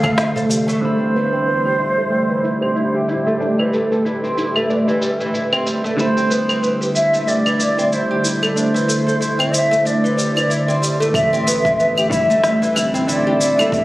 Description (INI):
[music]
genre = organic downtempo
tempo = 93 BPM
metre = 4/4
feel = swing 57% on 16ths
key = A minor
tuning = A4 = 440 Hz
[part]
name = bansuri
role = melody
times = 0.0-13.8 s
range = C5 to F5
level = -19 LUFS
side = equal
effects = ping-pong delay
[part]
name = ethereal airy pad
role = sustained chords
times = 0.0-13.8 s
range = A2 to C5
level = -25 LUFS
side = equal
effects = ensemble chorus, built-in reverb, vintage 12-bit sampler grit, sidechain pumping
[part]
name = oud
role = arpeggios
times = 0.0-13.8 s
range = E3 to A4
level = -19 LUFS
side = equal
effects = low-pass filter, digital delay
[part]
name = electronic claves, shaker and snare drum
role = drums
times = 0.0-13.8 s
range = none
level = -23 LUFS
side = equal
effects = low-pass filter on perc, studio reverb, low-pass filter on snare
[part]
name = electronic kick drum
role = drums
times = 0.0-0.1, 11.1-13.8 s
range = none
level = -24 LUFS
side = equal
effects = studio reverb
[part]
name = darbuka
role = percussion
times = 0.0-0.8 s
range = none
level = -30 LUFS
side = equal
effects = none
[part]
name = clean electric guitar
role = accompaniment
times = 0.8-13.8 s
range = A2 to E4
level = -24 LUFS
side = right 1 dB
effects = phaser, sidechain pumping, digital delay
[part]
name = smooth synth bass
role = bass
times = 11.1-13.8 s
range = A1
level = -25 LUFS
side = equal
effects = sidechain pumping
[sound]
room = moderate echo chamber reverb, RT60 2.0 s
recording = recorded on a phone in the room, club reverb, compression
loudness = -15 LUFS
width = side -17 dB against mid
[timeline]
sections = 0.8-11.1 A section; 11.1-13.8 B section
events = kick drops out 0.2-0.8; filter sweep on oud 0.8-11.1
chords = 0.0 Am7; 6.0 Dsus2; 11.1 Am7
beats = 0.18 | 0.82 1.47 2.11 2.76 | 3.40 4.05 4.69 5.34 | 5.98 6.63 7.27 7.92 | 8.56 9.21 9.86 10.50 | 11.14 11.79 12.44 13.08 | 13.73